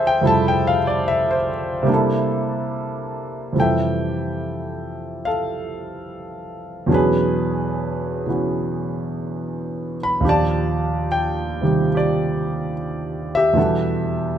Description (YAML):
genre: jazz ballad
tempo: 72 BPM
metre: 4/4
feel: swing 69% on 8ths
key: unclear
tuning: A4 = 440 Hz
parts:
  - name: warm concert grand piano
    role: solo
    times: 0.0-14.4 s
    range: Eb2 to B5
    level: -19 LUFS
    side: equal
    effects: none
room: moderate large studio reverb, RT60 1.2 s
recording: none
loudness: -19 LUFS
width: side -9 dB against mid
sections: 0.0-3.6 A section; 3.6-14.4 B section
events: none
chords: 0.0 Fmaj9; 1.9 C13; 3.6 Fmaj9; 6.9 E13; 10.2 Ebmaj7; 13.6 Em11